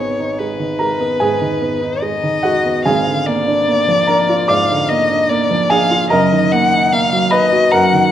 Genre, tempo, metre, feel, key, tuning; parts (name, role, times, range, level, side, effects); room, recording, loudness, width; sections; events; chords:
classical, romantic duo for violin and grand piano; 74 BPM; 4/4; rubato; Eb minor; A4 = 440 Hz
warm violin; melody; 0.0-8.1 s; Cb5 to Gb5; -16 LUFS; left 3 dB
warm grand piano; accompaniment; 0.0-8.1 s; Gb1 to D6; -15 LUFS; right 2 dB
moderate recital hall reverb, RT60 1.4 s; nothing above 10.3 kHz; -12 LUFS; side -10 dB against mid
0.0-8.1 A section
0.0 Abm; 2.9 Bb7/Ab; 6.1 Ebm/Gb